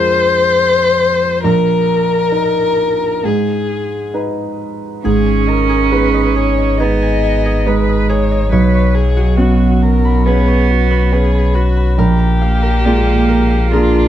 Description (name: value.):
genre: neoclassical piano and strings.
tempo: 69 BPM.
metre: 4/4.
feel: rubato.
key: G# minor.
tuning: A4 = 440 Hz.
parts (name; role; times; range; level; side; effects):
dark violin; melody; 0.0-14.1 s; E#4 to D#5; -17 LUFS; left 4 dB; none.
felt-muted upright piano; accompaniment; 0.0-14.1 s; A#1 to B4; -17 LUFS; right 2 dB; none.
concert harp; arpeggios; 5.0-14.1 s; B3 to C#6; -24 LUFS; left 2 dB; tape echo.
rich cello; second line; 5.1-14.1 s; F#3 to D4; -18 LUFS; right 7 dB; none.
saturated sub bass; bass; 5.1-14.1 s; G#1 to B1; -14 LUFS; equal; none.
room: little or no reverb.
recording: close, detailed microphones.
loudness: -11 LUFS.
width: side -11 dB against mid.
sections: 0.0-5.0 A section; 5.0-14.1 B section.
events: none.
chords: 0.0 A#7(no3); 1.4 D#5/A#; 3.2 G#m; 8.5 Bsus2; 12.0 A#7.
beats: 0.58 | 1.44 2.33 3.24 4.15 | 5.05 5.92 6.79 7.66 | 8.52 9.38 10.27 11.13 | 11.99 12.85 13.72.